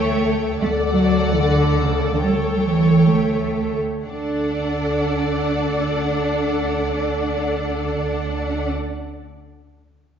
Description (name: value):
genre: classical, dramatic, fast romantic movement for symphony orchestra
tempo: 116-155 BPM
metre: 4/4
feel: rubato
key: D major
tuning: A4 = 439 Hz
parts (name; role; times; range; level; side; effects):
- warm symphonic violin section; melody; 0.0-8.7 s; F#5 to G5; -33 LUFS; left 3 dB; none
- warm symphonic violin section; second line; 0.0-8.7 s; C#5 to D5; -28 LUFS; left 2 dB; none
- rich symphonic viola section; accompaniment; 0.0-8.7 s; A4; -25 LUFS; left 1 dB; none
- warm studio cello section; bass; 0.0-8.7 s; C#3 to D4; -21 LUFS; right 1 dB; none
- warm studio double bass section; bass; 0.0-8.7 s; D2; -26 LUFS; right 3 dB; none
room: wet scoring stage reverb, RT60 1.7 s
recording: heard from further back in the room, nothing above 7.5 kHz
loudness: -18 LUFS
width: side -8 dB against mid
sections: 0.0-4.1 A section; 4.1-7.9 B section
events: slowing down 0.0-4.1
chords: 0.0 A7/D; 0.6 D; 2.2 A7/D; 4.1 D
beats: 0.21 | 0.60 1.00 1.39 1.80 | 2.22 2.65 3.09 3.56 | 4.06 4.54 5.03 5.51 | 6.00 6.49 6.97 7.45